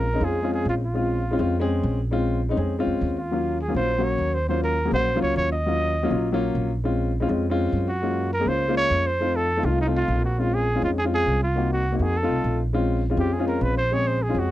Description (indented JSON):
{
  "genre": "jazz",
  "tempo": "204 BPM",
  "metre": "4/4",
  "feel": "straight",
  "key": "Bb minor",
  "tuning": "A4 = 440 Hz",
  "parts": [
    { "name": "breathy trumpet", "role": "melody", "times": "0.0-14.5 s", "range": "Eb4 to Eb5", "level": "-25 LUFS", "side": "right 1 dB", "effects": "none" },
    { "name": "dark baby grand piano", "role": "accompaniment", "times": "0.0-14.5 s", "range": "Gb3 to Ab4", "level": "-25 LUFS", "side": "left 2 dB", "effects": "none" },
    { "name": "upright bass", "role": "bass", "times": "0.0-14.5 s", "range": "Bb1 to Gb2", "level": "-26 LUFS", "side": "right 1 dB", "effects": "none" }
  ],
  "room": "light reverb",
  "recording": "dry, close 1970s-style studio recording",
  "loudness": "-21 LUFS",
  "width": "side -14 dB against mid",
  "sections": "0.0-12.7 A section; 12.7-14.5 B section",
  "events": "trumpet solo 12.7-14.5",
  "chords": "0.0 Bbm9; 3.3 Ebm9; 6.8 Bbm9; 8.0 Gbmaj7; 9.2 F7; 10.4 Bbm9; 11.6 Cm7b5; 12.2 F7; 12.7 Bbm9",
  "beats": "0.07 0.36 0.66 | 0.95 1.25 1.54 1.84 | 2.13 2.43 2.72 3.02 | 3.31 3.60 3.90 4.20 | 4.49 4.78 5.08 5.37 | 5.67 5.96 6.26 6.55 | 6.85 7.14 7.44 7.73 | 8.03 8.32 8.62 8.91 | 9.20 9.50 9.79 10.09 | 10.38 10.68 10.97 11.27 | 11.56 11.86 12.15 12.45 | 12.74 13.04 13.33 13.63 | 13.92 14.22 14.51"
}